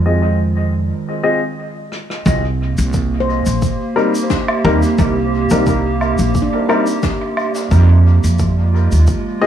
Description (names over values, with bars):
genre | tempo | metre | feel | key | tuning
ambient dub | 88 BPM | 4/4 | swing 54% on 16ths | C minor | A4 = 439 Hz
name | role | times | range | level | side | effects
warbly tape-like pad | sustained chords | 0.0-9.5 s | Eb3 to C5 | -21 LUFS | right 3 dB | chorus, built-in reverb
upright bass | bass | 0.0-9.1 s | Bb1 to F2 | -14 LUFS | right 1 dB | none
dark upright piano | stabs | 0.1-9.5 s | G3 to Eb5 | -20 LUFS | left 3 dB | low-pass filter, dub echo
rim click, shaker, snare drum and woodblock | drums | 1.9-9.2 s | none | -25 LUFS | right 1 dB | dub echo
electronic kick drum | drums | 2.3-9.2 s | none | -20 LUFS | equal | none
handpan | arpeggios | 3.2-7.8 s | D4 to C5 | -27 LUFS | left 2 dB | dub echo
room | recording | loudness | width
light reverb, small room ambience | echo-heavy mix | -13 LUFS | side -10 dB against mid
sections
0.0-2.3 A section; 2.3-9.5 B section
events
break 0.9-2.3; drum fill 1.9-2.3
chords
0.0 Fm7; 2.3 Cm7; 7.7 Fm